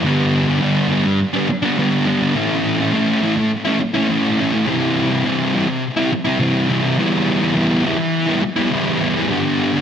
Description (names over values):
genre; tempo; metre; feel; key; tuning
rock; 104 BPM; 4/4; straight; unclear; A4 = 436 Hz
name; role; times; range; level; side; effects
fuzz guitar; solo; 0.0-9.8 s; G2 to E4; -15 LUFS; equal; distortion, digital delay
room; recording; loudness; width
wet studio reverb, RT60 0.8 s; dense, heavily limited modern master; -15 LUFS; side -8 dB against mid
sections
0.0-9.8 A section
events
none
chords
0.1 G; 2.4 A; 4.7 C; 7.0 Em; 9.3 G